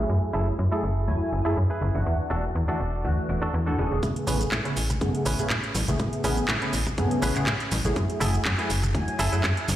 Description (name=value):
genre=filtered disco house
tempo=122 BPM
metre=4/4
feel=swing 54% on 16ths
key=A major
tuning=A4 = 440 Hz
part: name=funky polysynth comp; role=accompaniment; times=0.0-9.4 s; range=C#3 to G#5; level=-28 LUFS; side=equal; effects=chorus, phaser, sidechain pumping, low-pass filter
part: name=direct-recorded clean electric guitar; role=riff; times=0.0-9.7 s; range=C#4 to B4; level=-33 LUFS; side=right 1 dB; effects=sidechain pumping, low-pass filter
part: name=slap-like FM bass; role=bass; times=0.0-9.8 s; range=E1 to A2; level=-25 LUFS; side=equal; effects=tube saturation, sidechain pumping, low-pass filter
part: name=electronic kick drum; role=drums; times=4.0-9.5 s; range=none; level=-32 LUFS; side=equal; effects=high-pass filter on kick, high-pass filter on room
part: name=house drum kit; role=drums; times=4.0-9.8 s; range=handclaps, hi-hat, shaker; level=-29 LUFS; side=right 1 dB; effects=sidechain pumping on hats, high-pass filter on hats, sidechain pumping on perc, high-pass filter on perc, high-pass filter on snare, high-pass filter on room
part: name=tambourine and congas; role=percussion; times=4.0-9.8 s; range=none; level=-35 LUFS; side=left 1 dB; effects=sidechain pumping on perc, low-pass filter on perc
room=light reverb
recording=played on a big sound system in a bare room, large studio reverb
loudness=-23 LUFS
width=side -13 dB against mid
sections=0.0-4.0 A section; 4.0-9.8 B section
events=filter sweep 0.0-4.0, 4.0-9.8; build-up 4.0-9.8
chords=0.1 F#m9; 2.1 E9sus4; 4.0 Amaj9; 8.0 F#m9